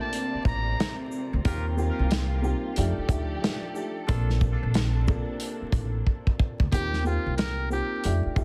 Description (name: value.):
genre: hip hop, boom-bap hip-hop.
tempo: 91 BPM.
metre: 4/4.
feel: swing 62% on 16ths.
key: Bb major.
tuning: A4 = 440 Hz.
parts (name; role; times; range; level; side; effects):
trumpet with metal mute; melody; 0.0-1.0, 6.7-8.2 s; F4 to Bb5; -35 LUFS; equal; high-pass filter, low-pass filter, tape echo.
dark upright piano; accompaniment; 0.0-8.4 s; A3 to A4; -35 LUFS; equal; cassette tape, high-pass filter, low-pass filter.
warm symphonic string section; sustained chords; 0.0-6.7 s; C3 to D5; -40 LUFS; equal; high-pass filter, low-pass filter.
warm soul drum kit; drums; 0.1-8.4 s; hi-hat, kick drum, shaker, snare drum; -29 LUFS; equal; none.
upright bass; bass; 0.3-8.4 s; A1 to F2; -29 LUFS; equal; none.
muted trumpet section; stabs; 1.5-4.3 s; D4 to Bb4; -44 LUFS; equal; high-pass filter, low-pass filter, tape echo.
room: light reverb, studio reverb.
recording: dense, heavily limited modern master, vinyl crackle.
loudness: -27 LUFS.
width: mono.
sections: 0.0-6.7 A section; 6.7-8.4 B section.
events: drum fill 6.1-6.7.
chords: 0.0 Bbmaj9; 1.5 Eb69; 2.8 F13; 4.1 Bbmaj9; 6.7 Eb69.